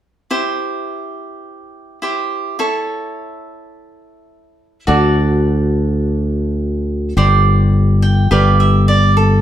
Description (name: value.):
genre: calypso.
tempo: 105 BPM.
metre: 4/4.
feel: swing 53% on 16ths.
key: C major.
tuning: A4 = 440 Hz.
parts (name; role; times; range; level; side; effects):
cavaquinho; accompaniment; 0.3-9.4 s; E4 to G5; -18 LUFS; right 3 dB; none.
modern bright fingered electric bass; bass; 4.9-9.4 s; G1 to D2; -12 LUFS; left 1 dB; none.
room: moderate stone room reverb, RT60 0.9 s.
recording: band playing live in one room.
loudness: -13 LUFS.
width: side -11 dB against mid.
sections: 0.3-9.4 A section.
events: cavaquinho fill 7.7-9.4.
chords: 0.3 C; 2.6 A; 4.9 D; 7.2 Gsus4; 8.3 G.